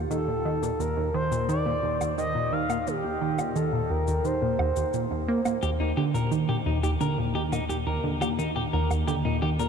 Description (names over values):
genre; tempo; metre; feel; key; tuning
ambient, sequencer-driven space music; 87 BPM; 4/4; straight; Eb lydian; A4 = 441 Hz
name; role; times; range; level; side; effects
tight sequenced synth; riff; 0.0-9.7 s; Eb2 to Bb3; -26 LUFS; right 1 dB; chorus, analog delay
analog drone; bass; 0.1-9.7 s; Eb2; -36 LUFS; left 1 dB; chorus
expressive portamento lead; melody; 0.1-5.3 s; G4 to F5; -30 LUFS; equal; chorus, analog delay
shaker and woodblock; percussion; 0.1-9.7 s; none; -40 LUFS; right 2 dB; analog delay
clean electric guitar; arpeggios; 5.6-9.7 s; Eb4 to Bb4; -30 LUFS; left 2 dB; auto-pan, analog delay
room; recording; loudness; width
wet huge ambient reverb, RT60 8.1 s; dark, warm production; -24 LUFS; side -6 dB against mid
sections
0.0-9.7 A section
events
fade-in on synth drone 0.0-9.7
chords
0.0 Eb5